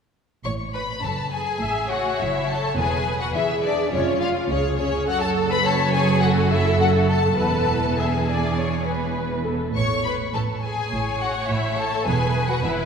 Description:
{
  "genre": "quick classical-period movement for string orchestra",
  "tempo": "104 BPM",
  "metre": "4/4",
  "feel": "straight",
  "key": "A major",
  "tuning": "A4 = 440 Hz",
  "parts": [
    { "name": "warm symphonic violin section", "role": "melody", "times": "0.4-12.7 s", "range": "C#5 to C#6", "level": "-26 LUFS", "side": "left 4 dB", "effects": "none" },
    { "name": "dark symphonic double bass section", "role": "bass", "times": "0.4-12.9 s", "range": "E1 to E2", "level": "-26 LUFS", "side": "right 2 dB", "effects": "none" },
    { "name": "warm symphonic violin section", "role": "second line", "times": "0.5-12.9 s", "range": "C#4 to C#5", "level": "-28 LUFS", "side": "left 2 dB", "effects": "none" },
    { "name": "warm symphonic cello section", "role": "bass", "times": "0.5-12.9 s", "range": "C#2 to E3", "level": "-27 LUFS", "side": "right 2 dB", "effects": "none" },
    { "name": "warm symphonic viola section", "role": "accompaniment", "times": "1.6-12.9 s", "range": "E#4 to E5", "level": "-26 LUFS", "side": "right 1 dB", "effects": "none" }
  ],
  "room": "wet church reverb, RT60 2.6 s",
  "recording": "none",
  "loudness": "-20 LUFS",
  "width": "side -6 dB against mid",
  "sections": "0.5-12.9 A section",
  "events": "none",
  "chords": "0.5 A; 2.8 E; 3.9 C#/E#; 5.1 F#m; 7.4 E; 9.8 A; 12.1 E5"
}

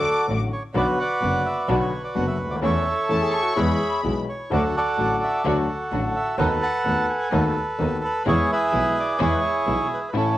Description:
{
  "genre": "tango",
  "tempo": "128 BPM",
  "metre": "4/4",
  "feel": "rubato",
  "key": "unclear",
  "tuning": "A4 = 440 Hz",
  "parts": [
    { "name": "bandoneon", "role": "melody", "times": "0.0-10.4 s", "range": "C#4 to A5", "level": "-23 LUFS", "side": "right 2 dB", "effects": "cassette tape" },
    { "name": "clear studio violin section", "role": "second line", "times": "0.0-4.2 s", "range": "A5 to D6", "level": "-28 LUFS", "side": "left 4 dB", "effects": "cassette tape" },
    { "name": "concert flute", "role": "second line", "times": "0.0-4.1 s", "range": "F#4 to A4", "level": "-27 LUFS", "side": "equal", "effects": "cassette tape" },
    { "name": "warm concert grand piano", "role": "accompaniment", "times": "0.3-10.3 s", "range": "F#1 to A4", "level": "-28 LUFS", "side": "left 3 dB", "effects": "cassette tape" },
    { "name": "dark studio string section", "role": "stabs", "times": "0.3-10.3 s", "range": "G#3 to F#4", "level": "-29 LUFS", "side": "left 1 dB", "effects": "cassette tape" },
    { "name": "clear double bass", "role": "bass", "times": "0.3-9.9 s", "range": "F#1 to E2", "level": "-27 LUFS", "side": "right 1 dB", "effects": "none" }
  ],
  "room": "light reverb, studio reverb",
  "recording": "home recording on cassette",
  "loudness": "-20 LUFS",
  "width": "side -14 dB against mid",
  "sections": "0.0-10.4 A section",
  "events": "none",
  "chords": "0.0 D; 0.8 Bm; 2.6 A/E; 3.6 E; 4.5 D; 6.4 B7/D#; 8.3 E"
}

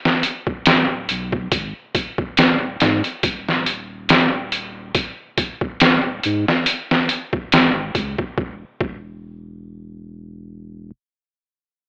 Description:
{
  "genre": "trip hop",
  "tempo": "70 BPM",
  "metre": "4/4",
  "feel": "swing 55% on 16ths",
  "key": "unclear",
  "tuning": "A4 = 440 Hz",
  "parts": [
    { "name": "trip hop sampler-style drum kit", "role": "drums", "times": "0.1-9.1 s", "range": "hi-hat, kick drum, snare drum", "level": "-19 LUFS", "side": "equal", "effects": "studio reverb, cassette tape" },
    { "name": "warm sub bass", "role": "bass", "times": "0.7-10.9 s", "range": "D1 to G#2", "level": "-31 LUFS", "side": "equal", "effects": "none" }
  ],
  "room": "light reverb",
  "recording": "home recording on cassette, AM radio sound",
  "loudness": "-20 LUFS",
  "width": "mono",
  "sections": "0.0-8.4 A section; 8.4-11.8 B section",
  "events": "none",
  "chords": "none"
}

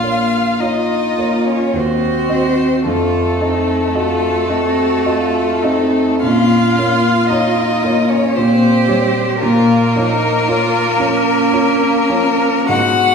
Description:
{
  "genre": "classical, slow romantic movement for piano quartet",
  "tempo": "55 BPM",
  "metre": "3/4",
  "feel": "uneven beats, rubato",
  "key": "Bb minor",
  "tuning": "A4 = 440 Hz",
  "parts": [
    { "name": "warm violin", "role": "melody", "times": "0.0-13.1 s", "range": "A4 to Gb5", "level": "-18 LUFS", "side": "left 4 dB", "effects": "none" },
    { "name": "rich violin", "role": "second line", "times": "0.0-13.1 s", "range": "A3 to Gb4", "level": "-20 LUFS", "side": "equal", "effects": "none" },
    { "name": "warm baby grand piano", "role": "accompaniment", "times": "0.0-13.1 s", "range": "Bb1 to Eb5", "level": "-16 LUFS", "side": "left 1 dB", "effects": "none" },
    { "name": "rich cello", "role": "second line", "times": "0.6-13.1 s", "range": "Cb4 to G4", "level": "-20 LUFS", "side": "right 4 dB", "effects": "none" }
  ],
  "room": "wet recital hall reverb, RT60 1.5 s",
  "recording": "heard from further back in the room",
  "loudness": "-12 LUFS",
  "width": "side -6 dB against mid",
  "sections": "0.0-13.1 A section",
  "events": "none",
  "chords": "0.0 Bbm; 1.7 Cdim/Eb; 2.8 F7b9; 6.2 Bbm; 8.4 Bbm69; 9.4 Bbm"
}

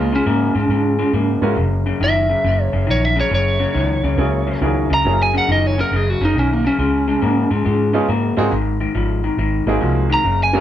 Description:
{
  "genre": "electric blues shuffle",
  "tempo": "138 BPM",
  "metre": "4/4",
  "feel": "swing 66% on 8ths",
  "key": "unclear",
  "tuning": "A4 = 440 Hz",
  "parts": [
    { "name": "lightly driven lead guitar", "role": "melody", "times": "0.0-7.5, 10.1-10.6 s", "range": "Bb3 to Bb5", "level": "-19 LUFS", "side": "right 1 dB", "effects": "digital delay" },
    { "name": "warm upright piano", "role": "accompaniment", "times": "0.0-10.6 s", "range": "Bb3 to Bb4", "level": "-22 LUFS", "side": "right 4 dB", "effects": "none" },
    { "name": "electric guitar through a small old amp", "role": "riff", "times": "0.0-10.6 s", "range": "Gb2 to Bb3", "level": "-21 LUFS", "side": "left 4 dB", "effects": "none" },
    { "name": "vintage muted fingered electric bass", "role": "bass", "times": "0.0-10.6 s", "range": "Gb1 to Ab2", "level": "-20 LUFS", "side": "right 1 dB", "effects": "none" }
  ],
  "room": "moderate large studio reverb, RT60 0.8 s",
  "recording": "band playing live in one room",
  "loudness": "-15 LUFS",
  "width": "side -11 dB against mid",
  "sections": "0.0-10.6 A section",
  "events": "lead electric guitar solo 0.0-10.6",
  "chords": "0.0 Db5; 1.6 Gb9; 6.8 Dbsus2; 8.5 Ab9"
}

